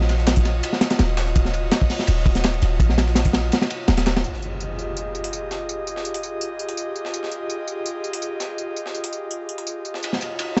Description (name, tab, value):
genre	drum and bass, jungle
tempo	166 BPM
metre	4/4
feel	straight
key	unclear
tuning	A4 = 438 Hz
part	airy breathy pad	sustained chords	0.0-10.6 s	F4 to Eb5	-31 LUFS	equal	chorus
part	warm 808-style bass	bass	0.0-4.2 s	Eb1 to Bb1	-23 LUFS	equal	none
part	crunchy breakbeat drum kit	drums	0.0-4.2, 10.0-10.6 s	hi-hat, kick drum, ride cymbal, snare drum	-23 LUFS	equal	none
part	breakbeat sampler-style drum kit	drums	0.1-10.6 s	hi-hat, snare drum, tambourine	-34 LUFS	equal	overdrive, high-pass filter on perc, high-pass filter on snare, high-pass filter on hats, high-pass filter on room
part	impact	sound effects	4.2-5.7 s	none	-37 LUFS	equal	none
room	little or no reverb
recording	dry, gritty hardware recording, nothing above 8.0 kHz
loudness	-23 LUFS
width	mono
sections	0.0-4.2 A section; 4.2-10.6 B section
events	drop 0.0-4.2; kick drops out 3.5-4.2; impact 4.2-5.7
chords	0.0 Ebm9; 4.2 Fm9; 10.0 Ebm9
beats	0.27 0.63 0.99 | 1.36 1.72 2.08 2.44 | 2.80 3.16 3.52 3.89 | 4.25 4.61 4.97 5.33 | 5.69 6.05 6.42 6.78 | 7.14 7.50 7.86 8.22 | 8.59 8.95 9.31 9.67 | 10.03 10.39